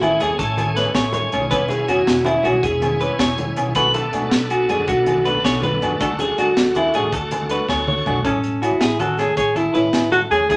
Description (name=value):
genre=highlife guitar band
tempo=107 BPM (dotted quarters)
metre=12/8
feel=straight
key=A major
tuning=A4 = 440 Hz
part: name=bright tonewheel organ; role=sustained chords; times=0.0-8.2 s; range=A3 to G#5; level=-30 LUFS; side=equal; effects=slow rotary speaker, overdrive, chorus vibrato
part: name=clean electric guitar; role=arpeggios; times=0.0-10.6 s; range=E4 to C#5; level=-22 LUFS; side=equal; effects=none
part: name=upright bass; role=bass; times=0.0-10.6 s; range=E1 to F#2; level=-30 LUFS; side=equal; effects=none
part: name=crunchy breakbeat drum kit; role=drums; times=0.0-10.6 s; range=hi-hat, kick drum, snare drum, toms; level=-27 LUFS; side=equal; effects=none
part: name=agogo bells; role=percussion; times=0.0-10.6 s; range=none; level=-30 LUFS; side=equal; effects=none
part: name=congas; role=percussion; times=0.0-10.6 s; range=none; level=-32 LUFS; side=equal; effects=none
part: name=fingerpicked old ladder-braced acoustic guitar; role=accompaniment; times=0.2-10.6 s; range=E3 to G#4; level=-30 LUFS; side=equal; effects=none
part: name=breathy alto saxophone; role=melody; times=8.2-10.6 s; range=C#4 to G#4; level=-21 LUFS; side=equal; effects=none
room=wet studio reverb, RT60 0.7 s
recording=none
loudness=-19 LUFS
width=mono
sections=0.0-8.2 A section; 8.2-10.6 B section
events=drum fill 7.5-8.2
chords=0.0 Amaj7; 1.5 E6; 3.8 Bm7; 6.0 D; 8.2 Amaj7